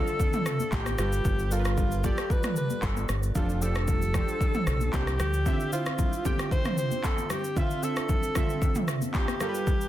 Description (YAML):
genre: amapiano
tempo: 114 BPM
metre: 4/4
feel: straight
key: D dorian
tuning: A4 = 440 Hz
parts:
  - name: warm alto saxophone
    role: melody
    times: 0.0-9.9 s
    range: F4 to C5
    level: -32 LUFS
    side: left 1 dB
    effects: digital delay
  - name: warm analog keys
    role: accompaniment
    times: 0.0-9.9 s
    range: D3 to G5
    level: -33 LUFS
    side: right 3 dB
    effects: chorus
  - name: deep house drum kit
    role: drums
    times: 0.1-9.9 s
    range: handclaps, kick drum, rim click, shaker, toms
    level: -28 LUFS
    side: equal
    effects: none
  - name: congas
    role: percussion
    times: 0.6-9.5 s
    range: none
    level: -38 LUFS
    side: left 7 dB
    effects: none
  - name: fingered electric bass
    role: bass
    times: 0.7-5.4 s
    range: F1 to D2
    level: -28 LUFS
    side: equal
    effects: none
room: light reverb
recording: dense, heavily limited modern master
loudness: -25 LUFS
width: side -13 dB against mid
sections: 0.0-9.9 A section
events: none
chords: 0.0 Dm9; 1.0 G9; 3.4 F69; 5.5 Dm9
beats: 0.20 0.72 | 1.25 1.78 2.30 2.83 | 3.35 3.88 4.41 4.93 | 5.46 5.99 6.51 7.04 | 7.57 8.09 8.62 9.14 | 9.67